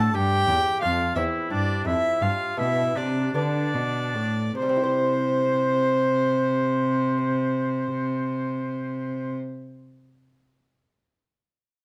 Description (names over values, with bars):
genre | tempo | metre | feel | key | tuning
classical, baroque-style sonata movement with continuo | 48-61 BPM (dotted quarters) | 12/8 | straight | C major | A4 = 439 Hz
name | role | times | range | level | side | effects
rich violin | melody | 0.0-9.4 s | C5 to A5 | -29 LUFS | equal | none
warm oboe | second line | 0.0-9.4 s | D4 to C5 | -32 LUFS | equal | none
lute | accompaniment | 0.0-9.6 s | E2 to C5 | -35 LUFS | equal | none
rich cello | bass | 0.0-9.3 s | E2 to D3 | -28 LUFS | equal | none
room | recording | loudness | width
light reverb | close, detailed microphones | -24 LUFS | mono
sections
0.0-4.6 A section; 4.6-9.5 B section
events
slowing down 0.0-4.6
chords
0.1 C; 2.2 G; 4.6 C